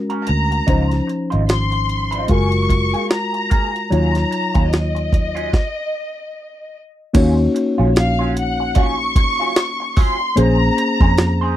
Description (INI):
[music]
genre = lush 1970s-style soul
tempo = 74 BPM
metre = 4/4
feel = swing 58% on 16ths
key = Eb dorian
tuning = A4 = 440 Hz
[part]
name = mellow reed electric piano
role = accompaniment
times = 0.0-11.6 s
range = Eb3 to Db5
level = -21 LUFS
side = left 2 dB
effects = none
[part]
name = electric guitar through a small old amp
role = riff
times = 0.1-11.6 s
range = Gb3 to C5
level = -26 LUFS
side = right 4 dB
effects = wah
[part]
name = jungle sampler-style drum kit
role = drums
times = 0.1-11.4 s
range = crash cymbal, hi-hat, kick drum, snare drum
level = -17 LUFS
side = equal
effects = none
[part]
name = warm symphonic violin section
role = melody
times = 0.3-11.6 s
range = Eb5 to Db6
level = -22 LUFS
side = left 1 dB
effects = none
[part]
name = vintage muted fingered electric bass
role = bass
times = 0.3-11.6 s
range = Gb1 to F2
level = -18 LUFS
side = equal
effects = none
[sound]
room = little or no reverb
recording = dry, close 1970s-style studio recording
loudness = -15 LUFS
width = side -12 dB against mid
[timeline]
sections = 0.0-7.1 A section; 7.1-11.6 B section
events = stop 5.5-7.1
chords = 0.0 Ab9sus4; 0.7 Dbmaj9; 2.3 Gbmaj9; 3.9 Ebm9; 5.5 N.C.; 7.1 Ebm9; 10.4 Bbm9